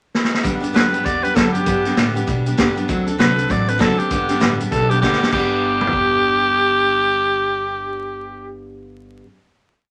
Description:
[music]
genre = rockabilly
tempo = 197 BPM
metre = 4/4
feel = swing 61% on 8ths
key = G major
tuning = A4 = 440 Hz
[part]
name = vintage drum kit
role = drums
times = 0.1-6.0 s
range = crash cymbal, hi-hat, kick drum, snare drum, toms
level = -22 LUFS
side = equal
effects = none
[part]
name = picked steel-string acoustic guitar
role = accompaniment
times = 0.4-9.3 s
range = G2 to A4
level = -25 LUFS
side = equal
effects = none
[part]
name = upright bass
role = bass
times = 0.4-9.2 s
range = F#1 to B2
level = -28 LUFS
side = equal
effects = none
[part]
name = raspy tenor saxophone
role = melody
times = 0.7-8.5 s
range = G4 to D5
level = -21 LUFS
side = equal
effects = none
[sound]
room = wet club reverb, RT60 0.6 s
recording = vinyl crackle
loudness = -18 LUFS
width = mono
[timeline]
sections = 0.0-0.4 pickup bar; 0.4-5.3 A section; 5.3-7.7 final chord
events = drum fill 0.1-0.4, 5.0-5.3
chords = 0.4 G; 2.9 D7; 4.1 G

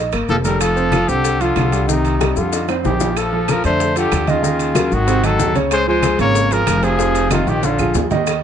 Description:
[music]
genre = Afro-Cuban jazz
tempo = 188 BPM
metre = 4/4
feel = straight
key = F major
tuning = A4 = 438 Hz
[part]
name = warm concert grand piano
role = accompaniment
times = 0.0-8.4 s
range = C3 to F5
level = -20 LUFS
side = right 3 dB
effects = none
[part]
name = upright bass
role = bass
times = 0.0-8.4 s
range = F1 to F2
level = -21 LUFS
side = equal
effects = none
[part]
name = bongos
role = percussion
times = 0.1-8.4 s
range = none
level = -26 LUFS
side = left 8 dB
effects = none
[part]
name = claves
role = percussion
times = 0.1-8.4 s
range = none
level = -30 LUFS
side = right 11 dB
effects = none
[part]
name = congas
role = percussion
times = 0.1-8.4 s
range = none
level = -25 LUFS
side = left 1 dB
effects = none
[part]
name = maracas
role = percussion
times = 0.1-8.4 s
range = none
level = -31 LUFS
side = left 10 dB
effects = none
[part]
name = timbales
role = percussion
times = 0.1-8.4 s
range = none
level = -27 LUFS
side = right 7 dB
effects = none
[part]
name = warm trumpet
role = melody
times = 0.3-8.0 s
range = Eb4 to Db5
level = -20 LUFS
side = equal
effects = plate reverb
[part]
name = breathy baritone saxophone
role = second line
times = 0.3-8.0 s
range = C3 to Bb3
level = -23 LUFS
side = left 6 dB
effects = none
[sound]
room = light reverb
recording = nothing above 10.3 kHz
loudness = -14 LUFS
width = side -8 dB against mid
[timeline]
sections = 0.0-3.2 A section; 3.2-8.4 B section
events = drum fill 2.2-3.2, 7.5-8.3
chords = 0.0 Ebadd9; 0.6 F69; 1.9 Cm; 2.5 Fsus2; 3.2 Bbmaj9; 4.4 Ebm9; 5.1 Ab7b9; 5.7 Db6; 7.0 Fm7; 7.6 Bb7

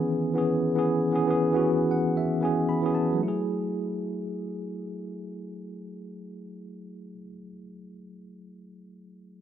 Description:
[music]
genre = amapiano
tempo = 116 BPM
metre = 4/4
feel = swing 58% on 16ths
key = F# minor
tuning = A4 = 440 Hz
[part]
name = tine electric piano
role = accompaniment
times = 0.0-9.4 s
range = D#3 to B5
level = -26 LUFS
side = equal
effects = medium stereo tremolo
[sound]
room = moderate lush hall reverb, RT60 2.3 s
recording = rough home demo mix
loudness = -24 LUFS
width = side -10 dB against mid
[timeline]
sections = 0.0-3.2 A section; 3.2-7.3 B section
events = tine electric piano fill 1.6-3.2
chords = 0.0 C#m7; 3.2 F#m9

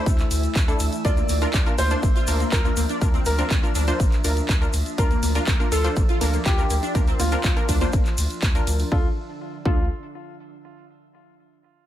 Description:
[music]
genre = progressive house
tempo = 122 BPM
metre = 4/4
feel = straight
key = D minor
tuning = A4 = 439 Hz
[part]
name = warm concert grand piano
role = melody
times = 0.0-9.8 s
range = F4 to D5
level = -30 LUFS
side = equal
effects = sidechain pumping, ping-pong delay
[part]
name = evolving wavetable pad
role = sustained chords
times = 0.0-9.1 s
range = E3 to E4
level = -34 LUFS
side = right 1 dB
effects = chorus, built-in reverb, sidechain pumping
[part]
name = wide unison pluck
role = arpeggios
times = 0.0-9.8 s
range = A3 to F4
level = -30 LUFS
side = equal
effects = ensemble chorus, sidechain pumping, ping-pong delay
[part]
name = wide unison pluck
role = stabs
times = 0.0-9.8 s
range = D4 to C5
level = -30 LUFS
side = left 1 dB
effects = sidechain pumping, ping-pong delay
[part]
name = twinkling granular texture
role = texture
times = 0.0-8.9 s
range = E5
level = -40 LUFS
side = right 2 dB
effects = built-in reverb, sidechain pumping
[part]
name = round analog bass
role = bass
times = 0.1-9.9 s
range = A1 to D2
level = -25 LUFS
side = equal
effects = sidechain pumping
[part]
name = big-room dance drum kit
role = drums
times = 0.1-8.9 s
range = handclaps, hi-hat, ride cymbal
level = -30 LUFS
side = right 1 dB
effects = none
[part]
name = electronic kick drum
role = drums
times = 0.1-9.8 s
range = none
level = -21 LUFS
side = equal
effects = none
[part]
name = tube shaker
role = percussion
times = 0.1-8.9 s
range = none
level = -35 LUFS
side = left 4 dB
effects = none
[sound]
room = little or no reverb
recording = none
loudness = -19 LUFS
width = side -12 dB against mid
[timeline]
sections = 0.0-8.9 A section; 8.9-10.9 B section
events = drop 0.0-8.9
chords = 0.0 Dsus2; 1.0 Bb; 8.9 Dm

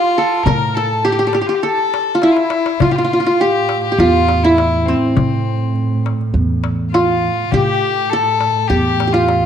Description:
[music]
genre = Arabic maqam ensemble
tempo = 102 BPM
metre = 4/4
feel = straight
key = A maqam saba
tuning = A4 = 440 Hz
[part]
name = qanun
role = melody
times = 0.0-9.5 s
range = C4 to Bb4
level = -15 LUFS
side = right 1 dB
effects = none
[part]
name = rich violin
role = second line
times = 0.0-9.5 s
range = C4 to Bb4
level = -20 LUFS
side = left 8 dB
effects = none
[part]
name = darbuka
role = percussion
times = 0.0-9.4 s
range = none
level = -22 LUFS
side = left 6 dB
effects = none
[part]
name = upright bass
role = bass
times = 0.5-9.5 s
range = E2 to A2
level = -20 LUFS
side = right 1 dB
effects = none
[part]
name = dark double bass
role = drone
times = 2.8-9.5 s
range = A2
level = -22 LUFS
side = right 2 dB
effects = stereo widening
[sound]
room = moderate echo chamber reverb, RT60 1.3 s, small room ambience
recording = 1960s-style stereo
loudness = -13 LUFS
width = side -8 dB against mid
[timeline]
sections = 0.0-2.8 A section; 2.8-9.5 B section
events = drum fill 2.2-2.8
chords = none

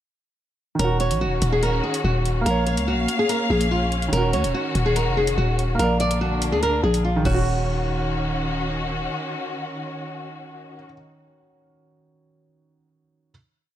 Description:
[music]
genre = hip hop, drill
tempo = 144 BPM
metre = 4/4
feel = half-time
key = Eb minor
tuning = A4 = 441 Hz
[part]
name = flamenco guitar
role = melody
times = 0.8-8.7 s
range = F4 to D5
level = -24 LUFS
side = equal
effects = low-pass filter
[part]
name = dark grand piano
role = accompaniment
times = 0.8-13.3 s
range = Eb3 to F5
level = -29 LUFS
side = right 2 dB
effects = low-pass filter
[part]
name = dark studio string section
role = sustained chords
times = 0.8-10.8 s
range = D3 to F5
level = -28 LUFS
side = left 1 dB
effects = none
[part]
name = growling 808-style bass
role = bass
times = 0.8-9.1 s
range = Eb1 to Eb2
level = -23 LUFS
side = equal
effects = none
[part]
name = drill drum kit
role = drums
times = 0.8-7.3 s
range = crash cymbal, hi-hat, kick drum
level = -30 LUFS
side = equal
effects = vintage 12-bit sampler grit
[sound]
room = light reverb, studio ambience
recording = none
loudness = -20 LUFS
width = side -11 dB against mid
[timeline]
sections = 0.8-7.5 breakdown; 7.5-10.8 final hit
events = none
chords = 0.8 Ebm7; 2.5 Bbm; 4.1 Ebm7; 5.8 Bb; 7.3 Ebm7

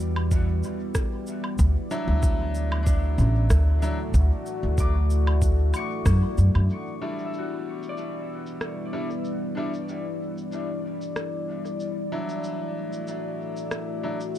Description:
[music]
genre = ambient dub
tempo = 94 BPM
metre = 4/4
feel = swing 54% on 16ths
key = E minor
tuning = A4 = 442 Hz
[part]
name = deep dark ambient pad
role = sustained chords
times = 0.0-14.4 s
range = G3 to D5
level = -31 LUFS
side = left 2 dB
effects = chorus, built-in reverb
[part]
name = concert harp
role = arpeggios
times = 0.0-12.3 s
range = D4 to D6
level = -39 LUFS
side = left 4 dB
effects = vintage 12-bit sampler grit, low-pass filter, dub echo
[part]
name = upright bass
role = bass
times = 0.0-6.7 s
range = A1 to F#2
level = -21 LUFS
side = equal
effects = none
[part]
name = electronic woodblock, cabasa and rim click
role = drums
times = 0.2-14.4 s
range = none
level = -36 LUFS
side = right 1 dB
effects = low-pass filter on perc, low-pass filter on snare, low-pass filter on room, dub echo
[part]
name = electronic kick drum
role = drums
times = 0.3-6.2 s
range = none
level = -25 LUFS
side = equal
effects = overdrive
[part]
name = bright upright piano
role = stabs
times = 1.9-14.2 s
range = F#3 to E4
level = -35 LUFS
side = equal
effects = dub echo
[sound]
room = little or no reverb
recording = echo-heavy mix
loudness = -23 LUFS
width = side -12 dB against mid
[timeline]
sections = 0.0-6.7 A section; 6.7-14.4 B section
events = band accent 6.1-6.4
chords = 0.0 Em7; 1.6 Dadd9; 6.7 Em7; 11.8 Dadd9

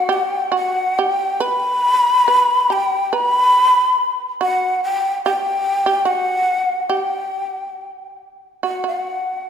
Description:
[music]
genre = japanese traditional, Japanese chamber music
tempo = 70 BPM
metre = 2/4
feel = rubato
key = G ryukyu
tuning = A4 = 439 Hz
[part]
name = breathy mellow shakuhachi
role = melody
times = 0.0-9.5 s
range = F#5 to B5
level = -16 LUFS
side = left 1 dB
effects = none
[part]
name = shamisen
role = second line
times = 0.0-9.5 s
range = F#4 to B4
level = -23 LUFS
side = right 4 dB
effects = none
[sound]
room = wet concert hall reverb, RT60 2.5 s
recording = minimal, uncompressed stereo recording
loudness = -15 LUFS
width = side -8 dB against mid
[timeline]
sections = 0.0-8.6 A section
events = none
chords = none

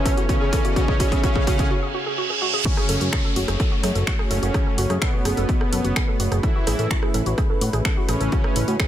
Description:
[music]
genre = melodic techno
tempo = 127 BPM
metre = 4/4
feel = straight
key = F# minor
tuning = A4 = 441 Hz
[part]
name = soft supersaw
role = melody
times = 0.0-8.9 s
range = B2 to E4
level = -27 LUFS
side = equal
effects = sidechain pumping, ping-pong delay
[part]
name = dark analog pad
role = sustained chords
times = 0.0-8.9 s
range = A3 to C#5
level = -30 LUFS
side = right 1 dB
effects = chorus, sidechain pumping
[part]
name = woody wave-folded pluck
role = arpeggios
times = 0.0-8.9 s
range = F#4 to A4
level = -28 LUFS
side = right 1 dB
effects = analog chorus, sidechain pumping, digital delay
[part]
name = riser, reverse cymbal and downlifter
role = sound effects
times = 0.0-6.4 s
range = none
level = -28 LUFS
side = right 4 dB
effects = none
[part]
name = electronic kick drum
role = drums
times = 0.1-8.9 s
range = none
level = -22 LUFS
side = equal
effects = overdrive, studio reverb
[part]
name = techno drum kit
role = drums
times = 0.1-8.9 s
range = finger snaps, hi-hat, rim click, toms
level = -29 LUFS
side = equal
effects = overdrive, high-pass filter on hats, studio reverb, high-pass filter on toms, high-pass filter on snare
[part]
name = fat analog bass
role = bass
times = 2.9-8.8 s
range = F#1 to A2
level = -23 LUFS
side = equal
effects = sidechain pumping
[sound]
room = light reverb, digital ambience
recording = none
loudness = -19 LUFS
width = side -11 dB against mid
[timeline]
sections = 0.0-2.7 A section; 2.7-8.9 B section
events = build-up 0.0-2.7; drum fill 0.0-1.7, 2.4; riser 0.0-1.7; break 1.7-2.7; reverse cymbal 1.7-2.7; drop 2.7-8.9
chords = 0.0 Aadd9; 2.7 F#m; 6.4 Aadd9

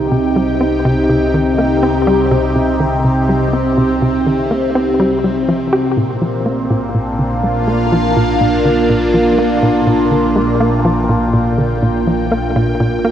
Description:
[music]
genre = ambient, sequencer-driven space music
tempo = 123 BPM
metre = 4/4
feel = straight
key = unclear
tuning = A4 = 442 Hz
[part]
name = phased analog pad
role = sustained chords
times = 0.0-13.1 s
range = Bb2 to G5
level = -14 LUFS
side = equal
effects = phaser, chorus, shimmer reverb
[part]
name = fat analog bass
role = bass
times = 0.0-13.1 s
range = Bb1 to C2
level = -24 LUFS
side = equal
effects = none
[part]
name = hollow square pluck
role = riff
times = 0.1-13.1 s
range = Bb2 to G4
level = -17 LUFS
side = equal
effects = chorus, ping-pong delay
[sound]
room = wet concert hall reverb, RT60 2.0 s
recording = worn, warbling old tape, cassette tape, warbly pitch drift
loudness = -12 LUFS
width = side -10 dB against mid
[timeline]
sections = 0.0-13.1 A section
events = none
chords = 0.0 Cm; 6.0 Bb

